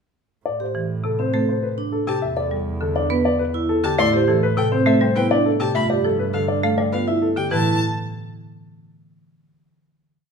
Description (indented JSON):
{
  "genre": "classical, minimalist pattern music",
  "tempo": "102 BPM",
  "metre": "3/4",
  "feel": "straight",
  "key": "A minor",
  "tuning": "A4 = 439 Hz",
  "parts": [
    { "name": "warm concert grand piano", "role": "melody", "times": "0.5-7.8 s", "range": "G4 to F5", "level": "-22 LUFS", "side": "left 5 dB", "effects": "none" },
    { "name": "warm double bass", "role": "bass", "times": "0.5-7.8 s", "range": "E2 to A2", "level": "-27 LUFS", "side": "right 3 dB", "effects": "none" },
    { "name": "vibraphone with medium mallets", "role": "arpeggios", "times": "0.6-7.8 s", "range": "C4 to B4", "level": "-23 LUFS", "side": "right 4 dB", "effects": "none" },
    { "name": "marimba with hard mallets", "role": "accompaniment", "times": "0.7-7.8 s", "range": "C3 to B3", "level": "-25 LUFS", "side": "right 1 dB", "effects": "none" },
    { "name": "rich violin", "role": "arpeggios", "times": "2.1-7.8 s", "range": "F5 to C6", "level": "-28 LUFS", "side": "left 2 dB", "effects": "none" }
  ],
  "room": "wet large studio reverb, RT60 1.3 s",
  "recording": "minimal, uncompressed stereo recording",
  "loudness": "-18 LUFS",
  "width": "side -6 dB against mid",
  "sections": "0.5-7.5 A section; 7.5-9.3 final chord",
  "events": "none",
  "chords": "0.5 Am; 2.2 E7(no3); 4.0 Am9; 5.8 G9; 7.5 A5"
}